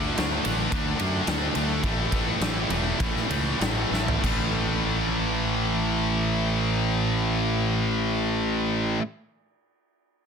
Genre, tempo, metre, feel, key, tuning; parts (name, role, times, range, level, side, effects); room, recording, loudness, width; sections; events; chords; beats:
hard rock; 94-111 BPM; 4/4; straight; A4 = 443 Hz
heavy high-gain guitar; riff; 0.0-9.0 s; A2 to D4; -30 LUFS; equal; distortion
high-gain distorted guitar; riff; 0.0-9.0 s; A2 to D4; -30 LUFS; right 14 dB; distortion
scooped high-gain guitar; riff; 0.0-9.0 s; A2 to D4; -29 LUFS; left 12 dB; distortion
fuzz fingered electric bass; bass; 0.0-9.0 s; E1 to F#2; -28 LUFS; equal; overdrive
huge arena drum kit; drums; 0.2-4.4 s; crash cymbal, kick drum, ride cymbal, snare drum, toms; -29 LUFS; equal
little or no reverb; dense, heavily limited modern master; -22 LUFS; side -6 dB against mid
0.0-4.2 A section; 4.2-9.3 B section
slowing down 0.0-4.2; drum fill 3.9-4.2
0.0 D5; 1.8 A5
0.17 0.72 1.27 | 1.83 2.41 3.00 3.60 | 4.23 4.87 5.50 6.14 | 6.78 7.41 8.05 8.68